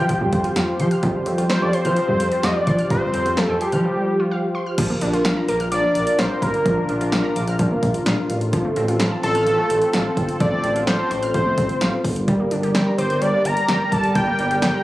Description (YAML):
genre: synth-pop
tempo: 128 BPM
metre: 4/4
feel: straight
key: Bb major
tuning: A4 = 440 Hz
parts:
  - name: fat analog lead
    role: melody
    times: 0.0-14.8 s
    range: G4 to Bb5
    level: -21 LUFS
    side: equal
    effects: none
  - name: sweeping resonant pad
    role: sustained chords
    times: 0.0-14.8 s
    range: F3 to D5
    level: -24 LUFS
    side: equal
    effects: chorus
  - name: wide unison pluck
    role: arpeggios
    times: 0.0-14.8 s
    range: F3 to G6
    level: -27 LUFS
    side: equal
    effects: analog delay
  - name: smooth gliding synth bass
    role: bass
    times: 0.0-14.7 s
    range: F1 to F3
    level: -24 LUFS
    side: equal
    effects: none
  - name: punchy analog drum machine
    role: drums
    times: 0.1-14.7 s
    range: crash cymbal, hi-hat, kick drum, snare drum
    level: -24 LUFS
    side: equal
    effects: none
room: moderate recital hall reverb, RT60 1.4 s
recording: recorded on a phone in the room, club reverb, compression, faint mains hum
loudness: -17 LUFS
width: side -16 dB against mid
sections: 0.0-4.8 A section; 4.8-14.8 B section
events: none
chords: 0.0 Fsus2; 4.8 Bb; 8.3 F/A; 12.0 Gm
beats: 0.09 0.56 | 1.03 1.50 1.97 2.44 | 2.91 3.38 3.84 4.31 | 4.78 5.25 5.72 6.19 | 6.66 7.12 7.59 8.06 | 8.53 9.00 9.47 9.94 | 10.41 10.88 11.34 11.81 | 12.28 12.75 13.22 13.69 | 14.16 14.62